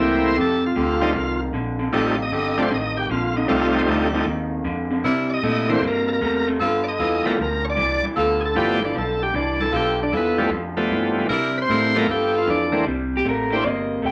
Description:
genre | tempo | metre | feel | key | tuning
electric blues shuffle | 154 BPM | 4/4 | swing 67% on 8ths | unclear | A4 = 439 Hz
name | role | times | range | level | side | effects
bright tonewheel organ | accompaniment | 0.0-13.6 s | D3 to Eb5 | -24 LUFS | equal | slow rotary speaker, overdrive
electric guitar through a small old amp | riff | 0.0-14.1 s | F2 to Bb3 | -27 LUFS | equal | none
vintage muted fingered electric bass | bass | 0.0-14.1 s | E1 to C3 | -32 LUFS | equal | none
clear saxophone section | stabs | 0.4-12.8 s | B3 to Bb4 | -26 LUFS | equal | none
electric guitar through a small old amp | melody | 13.2-14.1 s | G4 to G5 | -26 LUFS | equal | none
room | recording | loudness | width
wet small room reverb, RT60 0.6 s | none | -21 LUFS | mono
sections
0.0-12.9 A section; 12.9-14.1 B section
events
none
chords
0.4 F9; 5.0 C9; 6.6 G9; 11.3 C9; 12.1 G9; 12.9 C9

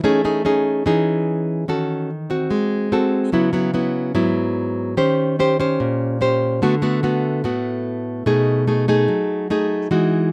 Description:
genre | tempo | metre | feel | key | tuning
bossa nova | 146 BPM | 4/4 | straight | unclear | A4 = 440 Hz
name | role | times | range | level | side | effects
nylon-string guitar | solo | 0.0-10.3 s | G#2 to B#4 | -20 LUFS | equal | none
room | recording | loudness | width
light reverb | none | -20 LUFS | mono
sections
0.0-9.9 A section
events
none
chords
0.0 Amaj7#11; 1.7 D#m7b5; 2.5 G#7b9; 3.3 C#m7; 5.0 D#6; 6.6 D6; 8.3 B6

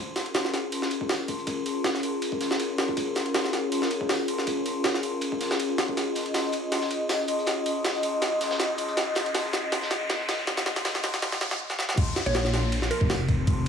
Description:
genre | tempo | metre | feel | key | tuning
drum and bass, jungle | 160 BPM | 4/4 | swing 54% on 16ths | Bb minor | A4 = 440 Hz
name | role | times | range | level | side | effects
airy breathy pad | sustained chords | 0.0-11.9 s | Db4 to Eb5 | -29 LUFS | left 2 dB | chorus
crunchy breakbeat drum kit | drums | 0.2-11.5 s | hi-hat, snare drum | -37 LUFS | right 1 dB | high-pass filter on hats, high-pass filter on snare, high-pass filter on room
jungle sampler-style drum kit | drums | 0.2-13.7 s | hi-hat, kick drum, ride cymbal, snare drum | -28 LUFS | equal | high-pass filter on kick, high-pass filter on cymbals, high-pass filter on snare, high-pass filter on hats
riser and downlifter | sound effects | 7.2-13.7 s | none | -34 LUFS | left 1 dB | none
mallet-like synth pluck | melody | 12.3-13.1 s | Bb4 to Db5 | -31 LUFS | right 2 dB | chorus, dub echo
dark detuned saw bass | bass | 12.3-13.7 s | F1 to Bb1 | -26 LUFS | left 1 dB | tube saturation
room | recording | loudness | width
moderate plate reverb, RT60 1.1 s | vinyl crackle, high-pass filter, small room reverb | -24 LUFS | side -7 dB against mid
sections
0.0-12.0 A section; 12.0-13.7 B section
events
build-up 0.0-12.0; filter sweep on analog synth pad 0.0-12.0; filter sweep 0.0-12.0; drum fill 6.0-11.6, 11.7; riser 7.2-11.6; drop 12.0-13.7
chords
0.0 Bbm7; 12.0 Bb5

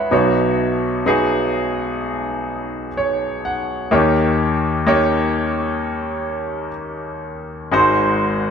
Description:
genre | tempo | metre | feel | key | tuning
pop | 63 BPM | 4/4 | straight | unclear | A4 = 440 Hz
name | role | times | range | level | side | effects
bright grand piano | solo | 0.0-8.5 s | G#1 to B5 | -17 LUFS | equal | none
room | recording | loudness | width
wet stone room reverb, RT60 1.3 s | band playing live in one room | -16 LUFS | side -6 dB against mid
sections
0.0-8.5 A section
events
grand piano fill 2.5-3.9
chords
0.1 Badd9; 3.9 D#7; 7.7 G#7

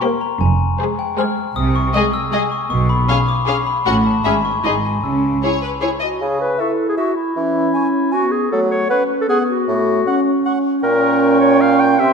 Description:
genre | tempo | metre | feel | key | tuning
cinematic | 156 BPM | 3/4 | straight | C# minor | A4 = 440 Hz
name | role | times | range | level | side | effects
glockenspiel with soft plastic mallets | melody | 0.0-5.8 s | G5 to F6 | -22 LUFS | left 5 dB | none
warm studio violin section | melody | 0.0-6.1 s | B4 to F#5 | -24 LUFS | left 4 dB | none
rich chamber violin section | second line | 0.0-5.9 s | F#4 to Ab4 | -25 LUFS | left 5 dB | none
warm symphonic viola section | accompaniment | 0.0-5.9 s | Ab3 to E4 | -25 LUFS | equal | none
dark chamber double bass section | bass | 0.4-5.4 s | F1 to C#2 | -21 LUFS | right 3 dB | none
rich studio cello section | bass | 0.4-5.4 s | F2 to C#3 | -22 LUFS | right 1 dB | none
warm clarinet | second line | 5.8-12.1 s | E4 to G5 | -18 LUFS | left 1 dB | none
clear bassoon | accompaniment | 6.2-12.1 s | A2 to F#3 | -21 LUFS | right 2 dB | none
mellow cor anglais | second line | 6.6-12.1 s | E5 to G#5 | -25 LUFS | right 5 dB | none
mellow flute section | second line | 6.6-12.1 s | C6 to C#6 | -25 LUFS | right 1 dB | none
dark French horn section | sustained chords | 6.6-12.1 s | A3 to E4 | -18 LUFS | right 1 dB | none
room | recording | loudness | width
wet scoring stage reverb, RT60 1.5 s | minimal, uncompressed stereo recording | -14 LUFS | side -5 dB against mid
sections
0.0-6.2 A section; 6.2-12.1 B section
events
none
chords
0.4 Fm; 1.6 G#/B#; 2.7 C#7(no3)/B; 3.9 F#m/A (rootless); 4.3 C#5/G#; 4.6 G#; 5.0 C#m; 7.4 C#m/E; 8.5 F#m; 9.7 F#m/A; 10.8 Gdim/Bb

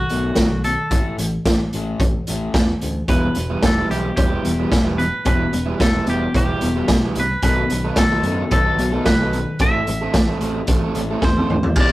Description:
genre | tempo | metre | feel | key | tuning
indie rock | 111 BPM | 4/4 | straight | E minor | A4 = 440 Hz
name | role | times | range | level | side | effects
twangy electric guitar | melody | 0.0-11.9 s | F#4 to E5 | -24 LUFS | equal | slapback echo
crunchy overdriven guitar | riff | 0.0-11.9 s | E2 to E4 | -25 LUFS | left 2 dB | none
picked electric bass | bass | 0.1-11.9 s | E1 to F#2 | -26 LUFS | equal | none
raw garage drum kit | drums | 0.1-11.9 s | crash cymbal, hi-hat, kick drum, snare drum, toms | -19 LUFS | equal | none
overdriven semi-hollow guitar | riff | 3.1-11.9 s | E3 to A4 | -25 LUFS | right 3 dB | none
room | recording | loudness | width
light reverb | rough rehearsal-room recording, warm saturation | -16 LUFS | side -17 dB against mid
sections
0.0-11.8 A section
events
drum fill 11.2-11.8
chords
0.0 B5; 0.9 A5; 3.1 Em; 7.4 B5; 9.6 Am

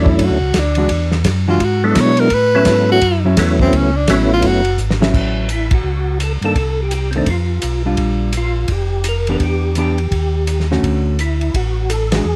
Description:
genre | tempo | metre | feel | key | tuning
soul jazz organ trio | 169 BPM | 4/4 | swing 62% on 8ths | A major | A4 = 440 Hz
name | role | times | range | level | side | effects
clear tenor saxophone | melody | 0.0-4.8 s | C4 to C#5 | -18 LUFS | equal | none
percussive tonewheel organ | melody | 0.0-12.4 s | F#3 to Bb4 | -22 LUFS | equal | slow rotary speaker, chorus vibrato
mellow tonewheel organ | bass | 0.0-12.4 s | F1 to B2 | -20 LUFS | equal | chorus vibrato, slow rotary speaker
warm soul drum kit | drums | 0.1-12.2 s | crash cymbal, hi-hat, kick drum, ride cymbal, snare drum | -23 LUFS | equal | none
hollow-body jazz guitar | accompaniment | 0.8-12.3 s | D3 to G4 | -21 LUFS | equal | none
room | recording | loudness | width
light reverb | close, detailed microphones | -16 LUFS | mono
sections
0.0-5.1 A section; 5.1-12.4 B section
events
tenor saxophone solo 0.0-5.1; drum fill 4.8-5.1; band accent 5.7, 12.1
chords
0.0 Dmaj7; 0.9 E9; 2.3 A6; 6.6 Cm; 7.3 Bdim; 8.0 Bb6; 9.4 Em7; 10.1 D#7#11; 10.8 Dmaj7

